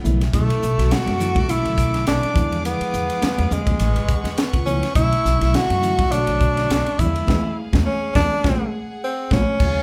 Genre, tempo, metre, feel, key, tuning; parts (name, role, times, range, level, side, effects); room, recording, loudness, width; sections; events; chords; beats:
electric jazz fusion; 104 BPM; 4/4; swing 55% on 16ths; B dorian; A4 = 440 Hz
mellow tine electric piano; accompaniment; 0.0-9.8 s; C#3 to E5; -30 LUFS; equal
crisp fusion drum kit; drums; 0.0-9.7 s; crash cymbal, hi-hat, kick drum, ride cymbal, snare drum; -25 LUFS; equal
congas; percussion; 0.0-9.5 s; -30 LUFS; equal
upright bass; bass; 0.1-9.8 s; F#1 to F#2; -25 LUFS; equal
clear tenor saxophone; melody; 0.3-9.8 s; G#3 to F#4; -25 LUFS; equal
bright chamber string section; sustained chords; 0.3-9.8 s; G#4 to D6; -35 LUFS; equal
moderate large studio reverb, RT60 0.9 s; band playing live in one room; -20 LUFS; mono
0.0-9.6 A section
tine electric piano fill 0.0-0.3; band accent 7.3-9.6; drum fill 9.0-9.6
0.3 Bm11; 2.4 E7b9; 3.8 A69; 5.0 Bm11; 7.0 E7b9; 8.4 A#5
| 0.34 0.91 1.49 2.07 | 2.65 3.23 3.81 4.38 | 4.96 5.54 6.12 6.70 | 7.28 7.86 8.44 9.02 | 9.60